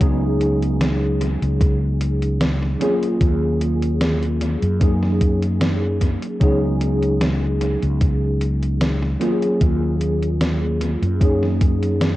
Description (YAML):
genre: vaporwave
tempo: 75 BPM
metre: 4/4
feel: swing 54% on 16ths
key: unclear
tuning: A4 = 438 Hz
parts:
  - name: mellow tine electric piano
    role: accompaniment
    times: 0.0-12.2 s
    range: Gb3 to Ab4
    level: -22 LUFS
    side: equal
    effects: slow stereo tremolo, ensemble chorus, analog delay
  - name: mellow fretless electric bass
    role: bass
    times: 0.0-12.2 s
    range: Db2 to Gb2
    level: -20 LUFS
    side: equal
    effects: none
  - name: electronic kick drum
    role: drums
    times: 0.0-11.8 s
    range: none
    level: -17 LUFS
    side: equal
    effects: none
  - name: gated 80s digital drum machine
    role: drums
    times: 0.0-12.2 s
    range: hi-hat, snare drum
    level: -25 LUFS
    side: equal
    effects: gated reverb, gated reverb snare, overdrive, analog delay
room: moderate spring reverb, RT60 2.3 s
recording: echo-heavy mix, cassette tape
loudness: -17 LUFS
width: side -16 dB against mid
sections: 0.0-12.2 A section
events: none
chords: 0.0 Db7sus4; 2.8 Ebm11; 4.8 Gb6; 6.4 Db7sus4; 9.2 Ebm11; 11.2 Gb6